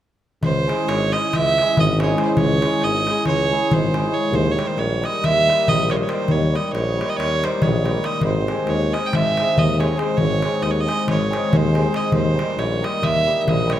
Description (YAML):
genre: balkan folk, Balkan wedding band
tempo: 277 BPM (eighths)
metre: 9/8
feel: straight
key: C# hungarian minor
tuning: A4 = 440 Hz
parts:
  - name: rich fiddle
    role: melody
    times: 0.4-13.8 s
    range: B#4 to G5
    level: -22 LUFS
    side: right 3 dB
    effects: none
  - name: warm tuba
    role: bass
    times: 0.4-13.8 s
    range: G#1 to D#2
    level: -23 LUFS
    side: equal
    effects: none
  - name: darbuka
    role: percussion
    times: 0.4-13.8 s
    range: none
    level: -23 LUFS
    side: left 1 dB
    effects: none
  - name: cimbalom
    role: accompaniment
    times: 0.7-13.8 s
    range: G3 to G#4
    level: -23 LUFS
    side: left 2 dB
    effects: none
room: moderate scoring stage reverb, RT60 1.6 s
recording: none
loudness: -17 LUFS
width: side -12 dB against mid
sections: 0.4-13.8 A section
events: none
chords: 0.4 C#m; 4.3 D#; 8.2 G#; 12.1 D#